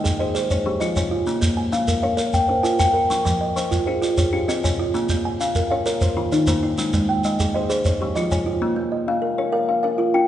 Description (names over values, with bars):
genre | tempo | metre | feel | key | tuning
southern african traditional, mbira-style interlocking cycle | 131 BPM (dotted quarters) | 12/8 | straight | Bb dorian | A4 = 438 Hz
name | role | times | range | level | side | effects
kalimba | arpeggios | 0.0-10.3 s | C3 to G5 | -22 LUFS | left 3 dB | none
kalimba | arpeggios | 0.0-10.3 s | Eb3 to Ab5 | -23 LUFS | right 4 dB | none
shekere | percussion | 0.1-8.5 s | none | -24 LUFS | right 1 dB | none
room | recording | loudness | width
wet recital hall reverb, RT60 1.7 s | recorded in a church or concert hall, nothing above 10.3 kHz | -18 LUFS | side -11 dB against mid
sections
0.0-8.6 A section; 8.6-10.3 B section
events
none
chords
0.4 Fm; 1.3 Bbm; 3.1 Fm; 4.9 Bbm; 5.9 Eb5; 6.8 Ab; 7.7 Fm; 8.6 Bbm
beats
0.35 0.81 | 1.27 1.73 2.18 2.64 | 3.10 3.56 4.02 4.48 | 4.94 5.40 5.86 6.32 | 6.78 7.24 7.69 8.15 | 8.61 9.07 9.53 9.98